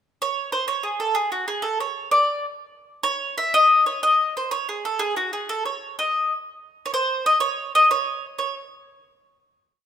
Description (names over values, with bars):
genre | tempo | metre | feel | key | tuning
italian folk | 124 BPM (dotted quarters) | 6/8 | straight | C# harmonic minor | A4 = 439 Hz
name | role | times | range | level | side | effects
bowl-back mandolin | solo | 0.2-8.5 s | F#4 to E5 | -20 LUFS | equal | none
room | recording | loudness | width
moderate recital hall reverb, RT60 1.7 s | minimal, uncompressed stereo recording | -20 LUFS | side -8 dB against mid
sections
0.0-0.7 pickup bar; 0.7-8.4 A section; 8.4-9.4 final note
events
none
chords
none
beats
0.21 | 0.68 1.16 | 1.64 2.11 | 2.59 3.07 | 3.55 4.03 | 4.51 5.00 | 5.49 5.97 | 6.45 6.93 | 7.42 7.90 | 8.39